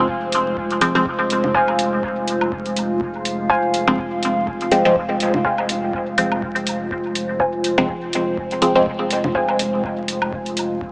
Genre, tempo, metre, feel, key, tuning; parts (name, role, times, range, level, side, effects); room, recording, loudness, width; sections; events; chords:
dub techno; 123 BPM; 4/4; swing 56% on 16ths; F minor; A4 = 439 Hz
dark analog pad; sustained chords; 0.0-10.9 s; Ab3 to F5; -22 LUFS; equal; chorus, phaser, sidechain pumping
filtered dub chord stab; stabs; 0.0-8.9 s; F3 to C4; -20 LUFS; equal; phaser, sidechain pumping, dub echo
soft dub sub bass; bass; 0.0-10.9 s; F1; -33 LUFS; equal; sidechain pumping
electronic kick drum; drums; 0.1-10.9 s; -34 LUFS; equal
electronic hi-hat; drums; 0.3-10.7 s; -24 LUFS; equal
congas and woodblock; percussion; 1.4-10.3 s; -27 LUFS; equal
warbly dusty pluck; riff; 1.5-9.5 s; C5 to Ab5; -24 LUFS; equal; chorus, sidechain pumping, dub echo
moderate huge ambient reverb, RT60 6.7 s; vinyl crackle, small speaker sound; -17 LUFS; side -27 dB against mid
0.0-10.9 A section
0.0 Fm